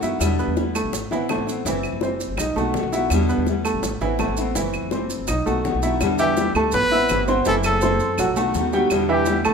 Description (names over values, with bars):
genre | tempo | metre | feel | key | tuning
latin, Cuban son and guajira | 166 BPM | 4/4 | straight | E minor | A4 = 439 Hz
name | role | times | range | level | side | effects
nylon-string guitar | accompaniment | 0.0-9.5 s | B2 to F#4 | -24 LUFS | left 3 dB | none
bright baby grand piano | arpeggios | 0.0-9.5 s | E3 to E6 | -24 LUFS | right 3 dB | none
upright bass | bass | 0.0-9.5 s | F#1 to F#2 | -27 LUFS | equal | none
bongos | percussion | 0.0-9.5 s | none | -30 LUFS | left 4 dB | none
maracas | percussion | 0.0-9.5 s | none | -34 LUFS | right 5 dB | none
claves | percussion | 0.2-9.5 s | none | -32 LUFS | right 4 dB | none
warm trumpet | melody | 6.2-9.4 s | G4 to B4 | -22 LUFS | equal | none
room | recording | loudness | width
moderate large studio reverb, RT60 1.2 s | minimal, uncompressed stereo recording | -19 LUFS | side -6 dB against mid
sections
0.0-6.0 A section; 6.0-9.5 B section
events
none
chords
0.2 Em7; 0.9 Amadd9; 1.7 F#m7b5; 2.4 B7; 3.1 Em7; 3.8 Amadd9; 4.6 F#m7b5; 5.3 B7; 6.0 Em7; 6.7 Amadd9; 7.5 F#m7b5; 8.2 B7; 8.9 Em7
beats
| 0.21 0.57 0.94 1.30 | 1.66 2.02 2.39 2.75 | 3.11 3.47 3.84 4.20 | 4.56 4.92 5.29 5.65 | 6.01 6.37 6.74 7.10 | 7.46 7.82 8.18 8.55 | 8.91 9.27